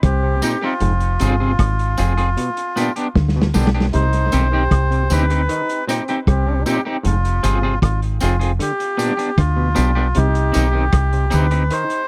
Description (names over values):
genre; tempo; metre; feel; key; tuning
roots reggae; 77 BPM; 4/4; straight; C harmonic minor; A4 = 445 Hz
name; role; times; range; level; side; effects
melodica; melody; 0.0-12.1 s; F4 to C5; -25 LUFS; equal; tape echo
warm trombone; second line; 0.0-12.0 s; C4 to G4; -30 LUFS; equal; tape echo
deep dub fingered electric bass; bass; 0.0-11.7 s; F1 to D2; -20 LUFS; equal; none
vintage drum kit; drums; 0.0-12.1 s; hi-hat, kick drum, rim click, snare drum; -25 LUFS; equal; tape echo
mellow clav; arpeggios; 0.2-11.8 s; Ab2 to Eb3; -28 LUFS; equal; none
electric guitar at the edge of break-up; accompaniment; 0.4-11.6 s; B3 to Ab4; -26 LUFS; equal; tremolo, tape echo
tambourine and woodblock; percussion; 0.4-11.5 s; none; -33 LUFS; equal; none
room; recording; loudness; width
little or no reverb; dry, close 1970s-style studio recording; -18 LUFS; mono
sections
0.0-12.1 A section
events
drum fill 3.2-3.9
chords
0.0 Cm; 0.8 Fm; 2.4 G; 3.9 Cm; 7.0 Fm; 8.6 G; 10.2 Cm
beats
0.03 | 0.81 1.59 2.37 3.15 | 3.93 4.71 5.49 6.27 | 7.04 7.82 8.60 9.38 | 10.16 10.93 11.71